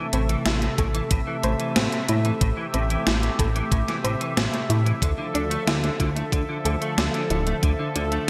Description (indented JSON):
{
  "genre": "synthwave",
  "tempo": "92 BPM",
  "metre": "4/4",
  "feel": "straight",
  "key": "D minor",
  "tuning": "A4 = 441 Hz",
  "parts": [
    { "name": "warm analog pad", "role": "sustained chords", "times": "0.0-8.3 s", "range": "C3 to E5", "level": "-30 LUFS", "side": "equal", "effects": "chorus, sidechain pumping" },
    { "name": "clean electric guitar", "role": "riff", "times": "0.0-8.2 s", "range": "A2 to A3", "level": "-34 LUFS", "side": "equal", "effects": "ensemble chorus, delay" },
    { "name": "soft round pluck", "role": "arpeggios", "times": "0.1-8.2 s", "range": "C4 to C5", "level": "-35 LUFS", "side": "equal", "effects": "chorus, delay" },
    { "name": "chorused synth bass", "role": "bass", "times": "0.1-8.2 s", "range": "D1 to A2", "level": "-27 LUFS", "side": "equal", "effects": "none" },
    { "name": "gated 80s digital drum machine", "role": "drums", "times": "0.1-8.2 s", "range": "hi-hat, snare drum", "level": "-29 LUFS", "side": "equal", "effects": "gated reverb, gated reverb snare, overdrive" },
    { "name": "electronic kick drum", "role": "drums", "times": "0.8-7.8 s", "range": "none", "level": "-27 LUFS", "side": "equal", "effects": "overdrive" }
  ],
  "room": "moderate lush hall reverb, RT60 1.9 s, digital ambience",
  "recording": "bright 1980s-style digital production",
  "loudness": "-24 LUFS",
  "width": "mono",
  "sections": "0.0-8.3 A section",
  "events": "none",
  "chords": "0.0 Am; 5.0 Dmadd9"
}